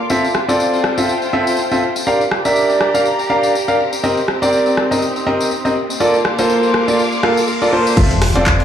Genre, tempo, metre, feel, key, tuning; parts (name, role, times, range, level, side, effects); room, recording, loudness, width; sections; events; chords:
piano house; 122 BPM; 4/4; swing 56% on 16ths; F major; A4 = 439 Hz
muted studio string section; texture; 0.0-8.6 s; Bb3 to D6; -22 LUFS; left 1 dB; sidechain pumping
clear concert grand piano; riff; 0.1-8.6 s; Bb3 to F5; -15 LUFS; equal; sidechain pumping, low-pass filter, analog delay
tambourine; percussion; 0.1-8.0 s; -27 LUFS; left 3 dB; analog delay
punchy analog drum machine; drums; 0.3-8.6 s; crash cymbal, handclaps, hi-hat, rim click; -22 LUFS; equal
riser and impact; sound effects; 5.8-8.6 s; -26 LUFS; equal
organ-like FM bass; bass; 8.0-8.6 s; F1; -18 LUFS; equal; sidechain pumping
dusty soul sampler-style drum kit; drums; 8.0-8.6 s; hi-hat, snare drum; -33 LUFS; equal
electronic kick drum; drums; 8.0-8.6 s; -14 LUFS; equal
moderate plate reverb, RT60 2.1 s; echo-heavy mix, studio reverb; -13 LUFS; side -9 dB against mid
0.0-8.0 A section
riser 5.8-8.0; impact 8.0-8.6
0.1 Fmaj7; 1.8 Gm7; 3.8 Cm7; 5.8 Bbmaj7; 8.0 Fmaj7